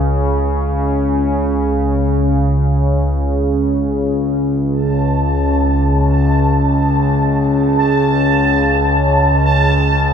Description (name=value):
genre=dark ambient drone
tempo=free time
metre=none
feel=none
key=unclear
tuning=A4 = 442 Hz
part: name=analog drone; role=drone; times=0.0-10.1 s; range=C#2 to C#3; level=-13 LUFS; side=equal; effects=chorus, phaser
part: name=bubbling stepped-filter texture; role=texture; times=4.7-10.1 s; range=A5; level=-18 LUFS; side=right 1 dB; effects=chorus, built-in reverb
room=wet huge ambient reverb, RT60 7.9 s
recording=in a vast, echoing space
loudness=-13 LUFS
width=side -7 dB against mid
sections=0.0-10.1 A section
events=none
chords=0.0 N.C.; 4.7 A/C#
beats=free time